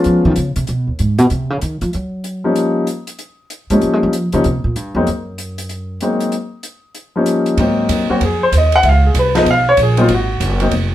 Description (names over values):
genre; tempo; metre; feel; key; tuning
jazz piano trio; 191 BPM; 4/4; swing 63% on 8ths; Ab major; A4 = 443 Hz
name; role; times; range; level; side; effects
warm upright piano; melody; 0.0-0.3, 2.4-10.7 s; F3 to Gb5; -14 LUFS; left 2 dB; none
compact cocktail drum kit; drums; 0.0-10.8 s; hi-hat, kick drum, ride cymbal, snare drum; -26 LUFS; right 3 dB; none
upright bass; bass; 0.1-10.9 s; F1 to Ab3; -16 LUFS; right 1 dB; none
room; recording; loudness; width
moderate studio reverb, RT60 0.6 s; band playing live in one room; -13 LUFS; side -13 dB against mid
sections
0.0-7.6 A section; 7.6-10.9 A section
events
upright bass solo 0.0-7.6; upright piano solo 7.6-10.9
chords
0.0 Db7; 1.3 Cdim; 2.6 Eb7; 5.1 Ab7; 6.3 Eb7; 7.6 Ab7; 8.8 Db7; 10.1 Ab7(no3)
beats
| 0.04 0.36 0.67 0.99 | 1.30 1.62 1.93 2.25 | 2.56 2.87 3.19 3.50 | 3.82 4.13 4.45 4.76 | 5.07 5.39 5.70 6.01 | 6.33 6.64 6.95 7.27 | 7.58 7.89 8.21 8.52 | 8.84 9.15 9.46 9.78 | 10.09 10.40 10.72